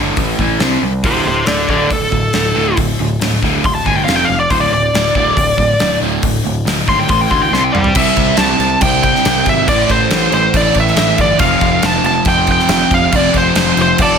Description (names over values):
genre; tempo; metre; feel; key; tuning
hard rock; 139 BPM; 4/4; straight; D minor; A4 = 439 Hz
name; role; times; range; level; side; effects
crunchy overdriven guitar; riff; 0.0-14.2 s; D2 to C4; -19 LUFS; right 12 dB; none
overdriven semi-hollow guitar; riff; 0.0-14.2 s; D2 to C4; -19 LUFS; left 9 dB; phaser
overdriven picked electric bass; bass; 0.0-14.1 s; D1 to D2; -21 LUFS; equal; none
gated 80s drum kit; drums; 0.2-14.1 s; crash cymbal, hi-hat, kick drum, snare drum, toms; -17 LUFS; equal; none
bluesy overdriven lead guitar; melody; 1.1-14.2 s; G4 to C6; -15 LUFS; left 1 dB; distortion
octave-fuzz lead guitar; second line; 14.0-14.2 s; A4; -16 LUFS; right 3 dB; distortion
room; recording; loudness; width
moderate large studio reverb, RT60 0.8 s, studio ambience; none; -11 LUFS; side -6 dB against mid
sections
0.0-8.0 A section; 8.0-14.2 B section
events
lead electric guitar solo 0.0-8.0; drum fill 7.5-8.0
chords
0.2 A5; 0.6 C5; 1.0 D5; 4.1 F5; 4.5 D5; 7.1 A5; 7.5 C5; 8.0 C; 9.7 Am; 11.4 F5